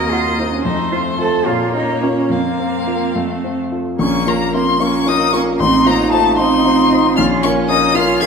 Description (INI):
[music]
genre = quick classical-period movement for piano quartet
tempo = 70-77 BPM (dotted quarters)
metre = 6/8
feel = rubato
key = Bb minor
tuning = A4 = 441 Hz
[part]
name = clear violin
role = melody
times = 0.0-8.3 s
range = C5 to Ab6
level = -18 LUFS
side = left 5 dB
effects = none
[part]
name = rich cello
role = second line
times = 0.0-8.3 s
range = A3 to Bb4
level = -19 LUFS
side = right 4 dB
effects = none
[part]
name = clear viola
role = accompaniment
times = 0.0-8.3 s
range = A3 to Eb4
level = -23 LUFS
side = right 2 dB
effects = none
[part]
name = warm grand piano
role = accompaniment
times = 0.0-8.3 s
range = A1 to Gb5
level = -18 LUFS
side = left 1 dB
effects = none
[sound]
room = wet recital hall reverb, RT60 1.5 s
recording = minimal, uncompressed stereo recording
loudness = -13 LUFS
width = side -5 dB against mid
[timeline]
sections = 0.0-4.0 A section; 4.0-8.3 B section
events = none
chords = 0.0 Cm7b5/Eb; 0.7 F; 1.5 Bbm; 2.3 Fsus4; 3.2 F; 4.0 Bbm; 5.6 F7/A; 7.2 Bbm